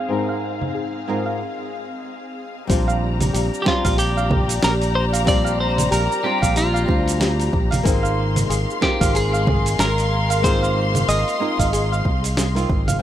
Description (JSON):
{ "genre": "sunset chillout", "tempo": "93 BPM", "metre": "4/4", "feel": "swing 58% on 16ths", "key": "unclear", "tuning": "A4 = 439 Hz", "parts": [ { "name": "flamenco guitar", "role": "accompaniment", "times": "0.0-13.0 s", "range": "Ab2 to Bb4", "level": "-27 LUFS", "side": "moving between left 6 dB and right 2 dB", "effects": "auto-pan, digital delay, shimmer reverb" }, { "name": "dark studio string section", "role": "sustained chords", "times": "0.0-13.0 s", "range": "Ab3 to C6", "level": "-26 LUFS", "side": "left 3 dB", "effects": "shimmer reverb" }, { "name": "soft round pluck", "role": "arpeggios", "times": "0.0-13.0 s", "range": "G4 to F5", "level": "-28 LUFS", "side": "right 3 dB", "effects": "chorus, digital delay, shimmer reverb" }, { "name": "dusty soul sampler-style drum kit", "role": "drums", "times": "0.6-13.0 s", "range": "cabasa, congas, hi-hat, snare drum", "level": "-24 LUFS", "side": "right 2 dB", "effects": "none" }, { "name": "modern bright fingered electric bass", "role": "bass", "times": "2.7-13.0 s", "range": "Ab1 to D2", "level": "-22 LUFS", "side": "equal", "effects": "none" }, { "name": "electronic kick drum", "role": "drums", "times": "2.7-12.8 s", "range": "none", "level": "-22 LUFS", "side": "equal", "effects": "overdrive" }, { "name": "twelve-string electric guitar", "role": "melody", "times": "3.6-12.0 s", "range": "F4 to Eb5", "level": "-24 LUFS", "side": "equal", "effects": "digital delay, shimmer reverb" } ], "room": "light reverb", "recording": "rough home demo mix, low-pass filter", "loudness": "-17 LUFS", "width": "side -11 dB against mid", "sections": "0.0-2.7 A section; 2.7-13.0 B section", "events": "filter sweep 0.0-2.7; break 1.4-2.7", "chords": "0.0 Ab6; 2.7 Bb6; 7.9 Ab6", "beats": "| 0.11 0.76 1.40 2.05 | 2.69 3.34 3.98 4.63 | 5.28 5.92 6.57 7.21 | 7.86 8.50 9.15 9.79 | 10.44 11.08 11.73 12.37 | 13.02" }